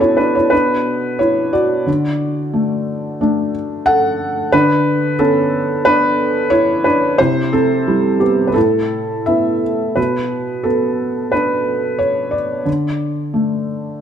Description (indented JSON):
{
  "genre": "neoclassical minimalist piano",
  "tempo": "89 BPM",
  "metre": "4/4",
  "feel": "rubato",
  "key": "B minor",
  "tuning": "A4 = 442 Hz",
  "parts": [
    { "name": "felt-muted upright piano", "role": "solo", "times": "0.0-14.0 s", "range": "A2 to F#5", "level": "-14 LUFS", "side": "equal", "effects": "none" }
  ],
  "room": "moderate recital hall reverb, RT60 1.3 s",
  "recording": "dark, warm production",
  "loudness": "-14 LUFS",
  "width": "side -8 dB against mid",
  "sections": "0.0-10.0 A section; 10.0-14.0 A section",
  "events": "none",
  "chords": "0.0 Bm; 1.9 D; 4.5 Bm/D; 7.2 C; 8.6 Asus2; 10.0 Bm; 12.7 D5",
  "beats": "0.52 1.20 | 1.87 2.54 3.20 3.86 | 4.52 5.19 5.84 6.50 | 7.18 7.86 8.55 9.27 | 9.97 10.65 11.33 12.00 | 12.67 13.34 14.00"
}